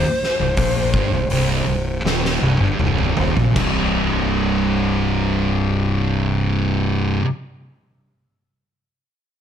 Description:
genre	stoner and doom metal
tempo	77-84 BPM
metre	4/4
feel	straight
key	C minor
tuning	A4 = 440 Hz
part	fuzz lead guitar	melody	0.0-2.8 s	C5	-24 LUFS	equal	wah, distortion, digital delay
part	thick fuzz guitar	riff	0.0-7.3 s	C2 to C3	-22 LUFS	left 6 dB	distortion
part	thick fuzz guitar	riff	0.0-7.2 s	C2 to C3	-22 LUFS	right 8 dB	distortion
part	fuzz fingered electric bass	bass	0.0-7.2 s	C1 to Bb1	-23 LUFS	equal	overdrive
part	oversized low-tuned drum kit	drums	0.2-3.7 s	crash cymbal, hi-hat, kick drum, snare drum, toms	-23 LUFS	equal	none
room	light reverb, studio reverb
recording	none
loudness	-17 LUFS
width	side -9 dB against mid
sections	0.0-3.6 A section; 3.6-6.7 B section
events	slowing down 0.0-3.6; drum fill 2.0-3.6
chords	0.0 Cm; 3.6 C5

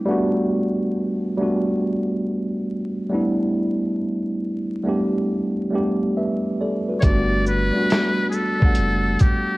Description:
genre	lo-fi hip hop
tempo	69 BPM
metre	4/4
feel	swing 66% on 16ths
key	G major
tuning	A4 = 435 Hz
part	mellow tine electric piano	accompaniment	0.0-9.6 s	G3 to F#5	-21 LUFS	equal	medium stereo tremolo, low-pass filter
part	trumpet with metal mute	melody	7.0-9.6 s	G4 to D5	-23 LUFS	left 1 dB	low-pass filter
part	soft dub sub bass	bass	7.0-9.2 s	F#1 to G1	-23 LUFS	equal	none
part	boom bap sampler-style drum kit	drums	7.0-9.5 s	hi-hat, kick drum, shaker, snare drum	-18 LUFS	equal	vintage 12-bit sampler grit
room	moderate plate reverb, RT60 2.6 s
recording	worn, warbling old tape, cassette tape, vinyl crackle, warbly pitch drift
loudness	-19 LUFS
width	side -21 dB against mid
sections	0.0-7.0 A section; 7.0-9.6 B section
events	none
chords	0.1 Gmaj7; 3.1 A9sus4; 7.0 Gmaj7

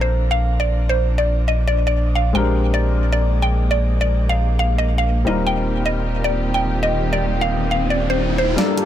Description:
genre	future bass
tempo	154 BPM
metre	4/4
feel	swing 53% on 16ths, half-time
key	unclear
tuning	A4 = 438 Hz
part	mallet-like synth pluck	melody	0.0-8.9 s	D4 to G5	-22 LUFS	equal	wide subtle chorus, digital delay
part	dark baby grand piano	accompaniment	0.0-8.9 s	G3 to Bb4	-26 LUFS	left 4 dB	none
part	dark studio string section	sustained chords	0.0-8.9 s	G2 to A5	-27 LUFS	right 2 dB	low-pass filter
part	saturated sub bass	bass	0.0-8.6 s	Eb1 to Bb1	-19 LUFS	equal	tube saturation
part	riser	sound effects	6.6-8.9 s	none	-27 LUFS	left 1 dB	none
part	supersaw chords	riff	8.6-8.9 s	G3 to A5	-23 LUFS	right 3 dB	low-pass filter
part	pop drum kit	drums	8.6-8.9 s	hi-hat, snare drum	-22 LUFS	right 1 dB	small room ambience
room	little or no reverb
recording	none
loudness	-16 LUFS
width	side -11 dB against mid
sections	0.0-8.6 A section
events	riser 6.6-8.6, 8.6; drum fill 8.6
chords	0.0 Bbmaj9; 2.3 Bb13; 5.3 Eb69

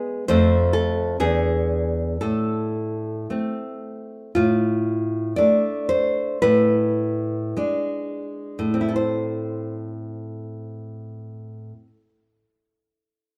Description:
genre	romantic piece for solo classical guitar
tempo	40-70 BPM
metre	2/4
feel	rubato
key	A minor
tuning	A4 = 438 Hz
part	nylon-string guitar	solo	0.0-12.1 s	E2 to D5	-23 LUFS	equal	none
room	moderate stone room reverb, RT60 1.3 s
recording	band playing live in one room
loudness	-22 LUFS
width	mono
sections	0.0-4.3 A section; 4.3-8.9 B section; 8.9-13.4 C section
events	slowing down 3.3-8.9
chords	0.3 F; 1.2 E7; 2.2 Am; 4.3 Dm/A; 6.4 Asus24; 8.9 Am

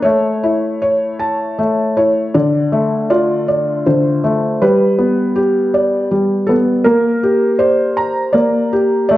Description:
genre	children's music, lullaby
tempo	80 BPM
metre	3/4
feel	rubato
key	D minor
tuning	A4 = 441 Hz
part	felt-muted upright piano	solo	0.0-9.2 s	D3 to Bb5	-12 LUFS	equal	none
room	moderate recital hall reverb, RT60 1.4 s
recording	worn, warbling old tape, cassette tape, warbly pitch drift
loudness	-12 LUFS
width	side -15 dB against mid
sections	0.0-2.3 A section; 2.3-9.2 B section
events	none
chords	0.1 A; 2.3 Dm; 4.6 G; 6.8 Bb6

